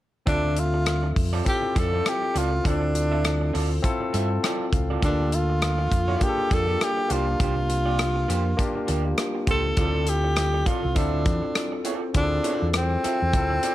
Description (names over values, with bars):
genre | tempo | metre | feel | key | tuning
lush 1970s-style soul | 101 BPM | 4/4 | swing 58% on 16ths | D minor | A4 = 443 Hz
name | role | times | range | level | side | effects
breathy tenor saxophone | melody | 0.3-13.7 s | C4 to A4 | -26 LUFS | equal | none
barky tine electric piano | accompaniment | 0.3-13.7 s | A3 to A5 | -29 LUFS | left 3 dB | none
electric guitar through a small old amp | riff | 0.3-13.7 s | Bb3 to E5 | -33 LUFS | right 8 dB | none
fingered electric bass | bass | 0.3-13.6 s | C2 to G2 | -25 LUFS | equal | none
modern studio drum kit | drums | 0.3-13.7 s | hi-hat, kick drum, rim click | -27 LUFS | equal | none
room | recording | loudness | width
studio ambience | dark, warm production | -21 LUFS | side -14 dB against mid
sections
0.3-9.8 A section; 9.8-13.7 B section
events
tine electric piano fill 3.8-5.0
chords
0.3 Dm7; 5.0 Gm7/D; 7.1 C7sus4; 9.8 Dm7